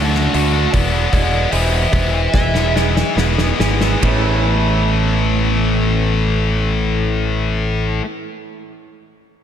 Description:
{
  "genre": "quiet-loud alternative rock",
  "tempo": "68-78 BPM",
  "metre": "4/4",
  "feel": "straight",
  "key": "A major",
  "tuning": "A4 = 435 Hz",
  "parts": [
    { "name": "smooth overdriven lead guitar", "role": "melody", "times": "0.0-2.7 s", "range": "C5 to A5", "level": "-22 LUFS", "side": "right 1 dB", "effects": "slapback echo, tape echo" },
    { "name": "electric guitar through a small old amp", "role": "arpeggios", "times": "0.0-8.1 s", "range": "E2 to G#4", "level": "-22 LUFS", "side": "right 4 dB", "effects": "tape echo" },
    { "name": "tight distorted guitar", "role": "riff", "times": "0.0-8.1 s", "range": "A2 to F#4", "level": "-20 LUFS", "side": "left 6 dB", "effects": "distortion, slapback echo" },
    { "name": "growling fingered electric bass", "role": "bass", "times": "0.0-8.0 s", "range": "E1 to D2", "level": "-18 LUFS", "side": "equal", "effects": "overdrive" },
    { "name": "loose indie drum kit", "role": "drums", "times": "0.1-4.2 s", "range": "hi-hat, kick drum, ride cymbal, snare drum", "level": "-21 LUFS", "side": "equal", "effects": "none" }
  ],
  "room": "moderate lush hall reverb, RT60 2.7 s",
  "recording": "big arena sound",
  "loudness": "-14 LUFS",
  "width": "side -9 dB against mid",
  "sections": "0.0-4.0 A section; 4.0-7.5 B section",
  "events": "slowing down 0.0-4.0; lead electric guitar solo 0.0-4.0; drum fill 2.3-4.0",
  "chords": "0.0 D; 0.7 E; 4.0 Aadd9"
}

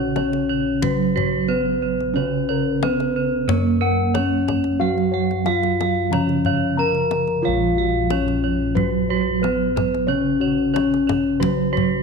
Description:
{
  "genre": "Javanese gamelan",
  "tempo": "91 BPM",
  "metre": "4/4",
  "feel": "straight",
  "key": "unclear",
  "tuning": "A4 = 440 Hz",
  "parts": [
    { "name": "gamelan-type bronze metallophone", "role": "melody", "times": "0.0-12.0 s", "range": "Gb3 to Bb4", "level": "-23 LUFS", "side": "left 3 dB", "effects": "slapback echo" },
    { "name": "gamelan-type bronze metallophone", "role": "accompaniment", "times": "0.0-12.0 s", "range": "Db3 to Bb3", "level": "-25 LUFS", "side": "right 13 dB", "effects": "none" },
    { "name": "gamelan-type bossed gongs", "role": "arpeggios", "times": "0.0-12.0 s", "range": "Gb4 to Bb5", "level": "-28 LUFS", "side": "left 11 dB", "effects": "none" },
    { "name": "gamelan-type bronze metallophone", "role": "arpeggios", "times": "0.0-12.0 s", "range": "Gb4 to Bb5", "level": "-25 LUFS", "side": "right 8 dB", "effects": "slapback echo" },
    { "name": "gamelan-type bossed gongs", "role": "bass", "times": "0.0-12.0 s", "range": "Bb1 to Gb4", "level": "-25 LUFS", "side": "left 2 dB", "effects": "none" },
    { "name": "kendang", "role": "percussion", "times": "0.2-11.9 s", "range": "none", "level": "-28 LUFS", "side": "left 8 dB", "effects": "none" }
  ],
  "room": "moderate echo chamber reverb, RT60 1.7 s",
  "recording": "1960s-style stereo with parts hard left and right",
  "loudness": "-18 LUFS",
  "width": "side -5 dB against mid",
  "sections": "0.0-12.0 A section",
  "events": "none",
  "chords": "none"
}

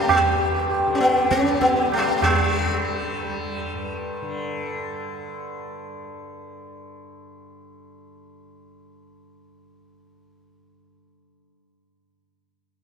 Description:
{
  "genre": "indian classical, Hindustani",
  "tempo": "100 BPM",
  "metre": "4/4",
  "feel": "straight",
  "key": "unclear",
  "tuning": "A4 = 439 Hz",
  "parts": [
    { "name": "sitar", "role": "melody", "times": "0.0-6.1 s", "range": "G3 to G4", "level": "-21 LUFS", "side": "left 1 dB", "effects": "none" },
    { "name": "tanpura", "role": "drone", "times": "0.0-11.4 s", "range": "G2 to G3", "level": "-32 LUFS", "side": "left 1 dB", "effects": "none" },
    { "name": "tabla", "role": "percussion", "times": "0.1-2.4 s", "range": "none", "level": "-24 LUFS", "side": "right 4 dB", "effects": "none" }
  ],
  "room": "wet cathedral reverb, RT60 4.2 s",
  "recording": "recorded in a church or concert hall",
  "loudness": "-20 LUFS",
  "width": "side -6 dB against mid",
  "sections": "0.0-2.2 A section; 2.2-4.6 B section",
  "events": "none",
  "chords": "none"
}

